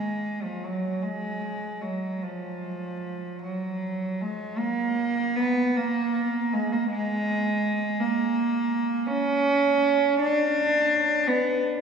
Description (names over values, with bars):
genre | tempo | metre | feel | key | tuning
classical, free, expressive piece for unaccompanied cello | 48-58 BPM (dotted quarters) | 6/8 | rubato | unclear | A4 = 444 Hz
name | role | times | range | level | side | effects
warm cello | solo | 0.0-11.6 s | F3 to D4 | -23 LUFS | right 1 dB | none
room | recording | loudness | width
wet cathedral reverb, RT60 4.9 s | heard from further back in the room, small room ambience | -23 LUFS | side -6 dB against mid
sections
0.0-11.8 A section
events
none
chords
none